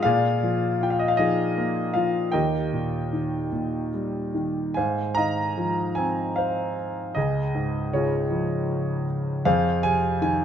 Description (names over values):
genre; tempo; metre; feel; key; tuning
classical, lyrical solo piano; 72-80 BPM; 3/4; rubato; Ab major; A4 = 442 Hz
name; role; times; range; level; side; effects
clear grand piano; solo; 0.0-10.4 s; Db2 to Bb5; -22 LUFS; equal; none
room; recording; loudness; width
moderate scoring stage reverb, RT60 1.7 s; close, detailed microphones; -22 LUFS; side -8 dB against mid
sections
0.0-4.8 A section; 4.8-10.4 B section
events
none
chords
0.0 Bb7; 2.3 Eb; 4.8 Ab6; 7.2 Dbadd9; 9.5 Fm7